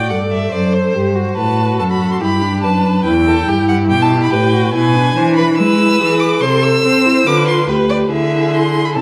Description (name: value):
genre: quick classical-period movement for string quartet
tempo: 142 BPM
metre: 4/4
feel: straight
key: E minor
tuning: A4 = 443 Hz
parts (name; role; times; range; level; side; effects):
- rich violin; melody; 0.0-9.0 s; B4 to E6; -21 LUFS; equal; none
- rich violin; second line; 0.0-9.0 s; G4 to D5; -22 LUFS; equal; none
- dark viola; accompaniment; 0.0-9.0 s; D4 to A4; -20 LUFS; equal; none
- rich cello; bass; 0.0-9.0 s; D2 to C4; -18 LUFS; equal; none
room: wet recital hall reverb, RT60 1.5 s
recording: vinyl crackle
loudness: -14 LUFS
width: mono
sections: 0.0-9.0 A section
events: none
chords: 0.0 F#dim; 1.4 B5/A; 2.2 Em/G; 3.1 Em; 4.7 E7/B; 6.4 Am/C; 7.3 Bdim/D; 8.1 E7/D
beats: 0.10 0.52 0.94 | 1.37 1.79 2.21 2.63 | 3.06 3.48 3.90 4.32 | 4.74 5.16 5.58 6.00 | 6.42 6.84 7.26 7.69 | 8.11 8.53 8.96